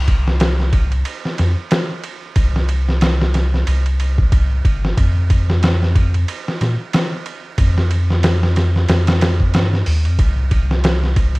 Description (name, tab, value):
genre	trip hop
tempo	92 BPM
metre	4/4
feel	swing 58% on 16ths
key	C minor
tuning	A4 = 440 Hz
part	soft dub sub bass	bass	0.0-11.4 s	G1 to Bb2	-16 LUFS	equal	none
part	trip hop sampler-style drum kit	drums	0.1-11.4 s	hi-hat, kick drum, ride cymbal, snare drum	-17 LUFS	equal	none
room	little or no reverb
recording	vinyl crackle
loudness	-14 LUFS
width	side -24 dB against mid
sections	0.0-11.4 A section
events	none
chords	none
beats	0.41 1.06 1.71 | 2.37 3.02 3.67 4.32 | 4.97 5.63 6.28 6.93 | 7.58 8.24 8.89 9.54 | 10.19 10.84